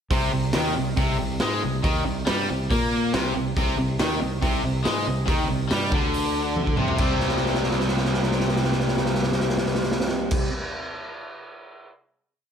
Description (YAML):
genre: hard rock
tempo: 140 BPM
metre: 4/4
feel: straight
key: C minor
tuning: A4 = 441 Hz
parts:
  - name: distorted electric guitar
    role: riff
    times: 0.1-10.5 s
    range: C3 to C4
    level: -28 LUFS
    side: right 8 dB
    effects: overdrive, slapback echo
  - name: distorted electric guitar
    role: riff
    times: 0.1-10.5 s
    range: C3 to C4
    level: -31 LUFS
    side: left 1 dB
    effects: overdrive, slapback echo
  - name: overdriven semi-hollow guitar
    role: riff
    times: 0.1-10.5 s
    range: C3 to C4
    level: -28 LUFS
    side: left 9 dB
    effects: slapback echo
  - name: modern bright fingered electric bass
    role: bass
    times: 0.1-10.4 s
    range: C2 to Bb2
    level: -29 LUFS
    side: equal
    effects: none
  - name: raw garage drum kit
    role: drums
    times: 0.1-11.9 s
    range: crash cymbal, hi-hat, kick drum, snare drum, toms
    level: -26 LUFS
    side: equal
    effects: none
room: moderate scoring stage reverb, RT60 1.6 s, small room ambience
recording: big arena sound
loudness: -21 LUFS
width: side -8 dB against mid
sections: 0.1-7.0 riff; 7.0-10.4 final chord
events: drum fill 6.6-7.0, 7.2-10.3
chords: 0.1 Cm; 7.0 C5